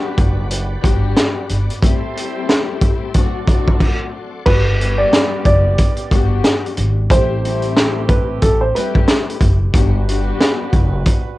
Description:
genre	hip hop, boom-bap hip-hop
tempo	91 BPM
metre	4/4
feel	swing 60% on 16ths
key	G major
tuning	A4 = 439 Hz
part	dark studio string section	accompaniment	0.0-11.2 s	F#3 to G4	-24 LUFS	left 9 dB	cassette tape, high-pass filter, low-pass filter
part	bright tonewheel organ	sustained chords	0.0-4.5 s	G3 to C6	-34 LUFS	equal	overdrive, chorus vibrato, slow rotary speaker, high-pass filter, low-pass filter, cassette tape
part	warm horn section	stabs	0.0-11.4 s	G3 to D5	-31 LUFS	right 9 dB	high-pass filter, low-pass filter, cassette tape, analog delay
part	upright bass	bass	0.2-11.0 s	F#1 to A1	-18 LUFS	equal	none
part	crunchy breakbeat drum kit	drums	0.2-11.2 s	crash cymbal, hi-hat, kick drum, snare drum	-15 LUFS	equal	cassette tape
part	warm upright piano	melody	4.5-9.0 s	A4 to D5	-19 LUFS	right 1 dB	high-pass filter, low-pass filter, cassette tape
room	light reverb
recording	home recording on cassette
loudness	-13 LUFS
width	side -18 dB against mid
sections	0.0-4.5 A section; 4.5-11.4 B section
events	stop 3.8-4.5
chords	0.0 Gmaj7; 1.8 Am7; 3.1 D7; 4.5 Gmaj7; 7.1 Am7; 9.7 Gmaj7

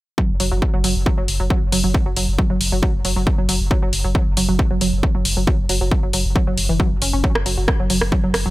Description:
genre	driving peak-time techno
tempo	136 BPM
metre	4/4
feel	straight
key	unclear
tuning	A4 = 440 Hz
part	analog pluck	riff	0.2-8.5 s	E3 to C#4	-23 LUFS	right 1 dB	chorus, overdrive, sidechain pumping, tape echo
part	electronic kick drum	drums	0.2-8.2 s	none	-19 LUFS	equal	overdrive
part	saturated sub bass	bass	0.3-8.5 s	F#1	-22 LUFS	equal	tube saturation, sidechain pumping, low-pass filter
part	techno drum kit	drums	0.4-8.4 s	hi-hat, rim click	-22 LUFS	equal	overdrive, sidechain pumping on hats
room	digital ambience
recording	none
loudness	-16 LUFS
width	side -18 dB against mid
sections	0.2-8.5 A section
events	none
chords	0.2 F#5

